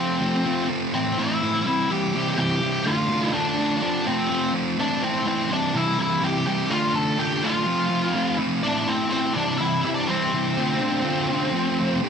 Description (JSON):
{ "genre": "rock", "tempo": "125 BPM", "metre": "4/4", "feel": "straight", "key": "unclear", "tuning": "A4 = 440 Hz", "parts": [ { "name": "octave-fuzz lead guitar", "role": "melody", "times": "0.0-12.0 s", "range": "C4 to A5", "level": "-24 LUFS", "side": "left 2 dB", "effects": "distortion" }, { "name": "fuzz guitar", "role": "riff", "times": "0.0-12.1 s", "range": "A2 to G4", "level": "-23 LUFS", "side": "right 1 dB", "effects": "distortion" } ], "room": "light reverb", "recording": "none", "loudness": "-20 LUFS", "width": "side -7 dB against mid", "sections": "0.0-12.1 A section", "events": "none", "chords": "0.0 F; 0.9 Am; 1.7 C; 2.9 Dm; 3.8 F; 4.8 Am; 5.5 Cadd9; 6.7 Dm; 7.7 F; 8.6 Am; 9.4 Cadd9; 10.6 Dm; 11.5 F" }